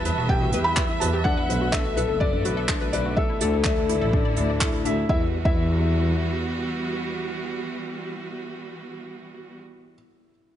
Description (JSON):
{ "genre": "piano and strings electronica", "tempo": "125 BPM", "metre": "4/4", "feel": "straight", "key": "E minor", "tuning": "A4 = 440 Hz", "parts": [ { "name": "felt-muted upright piano", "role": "melody", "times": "0.0-9.9 s", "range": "D5 to B5", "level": "-30 LUFS", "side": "left 1 dB", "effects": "digital delay" }, { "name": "clear studio string section", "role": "sustained chords", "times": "0.0-9.6 s", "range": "D3 to E5", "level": "-31 LUFS", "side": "right 2 dB", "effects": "sidechain pumping" }, { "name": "analog pluck", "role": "arpeggios", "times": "0.0-5.6 s", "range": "D4 to D5", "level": "-33 LUFS", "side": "left 3 dB", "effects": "chorus, sidechain pumping, digital delay" }, { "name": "felt-muted upright piano", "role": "riff", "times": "0.0-10.6 s", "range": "D4 to E5", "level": "-29 LUFS", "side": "left 5 dB", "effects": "digital delay" }, { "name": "rich studio double bass section", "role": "bass", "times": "0.1-6.5 s", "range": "E1 to E2", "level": "-26 LUFS", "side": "equal", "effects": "sidechain pumping" }, { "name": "soft brush drum kit", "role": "drums", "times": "0.1-4.9 s", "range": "handclaps, hi-hat", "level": "-28 LUFS", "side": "right 1 dB", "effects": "none" }, { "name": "electronic kick drum", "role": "drums", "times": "0.3-5.6 s", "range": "none", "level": "-25 LUFS", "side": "right 1 dB", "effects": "overdrive" } ], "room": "light reverb, studio ambience", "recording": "nothing above 10.9 kHz", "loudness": "-21 LUFS", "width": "side -10 dB against mid", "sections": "0.0-5.1 A section; 5.1-8.9 B section", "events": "drop 0.0-5.1", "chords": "0.0 Emadd9; 1.3 Bm7; 3.2 Dsus2; 5.1 Emadd9" }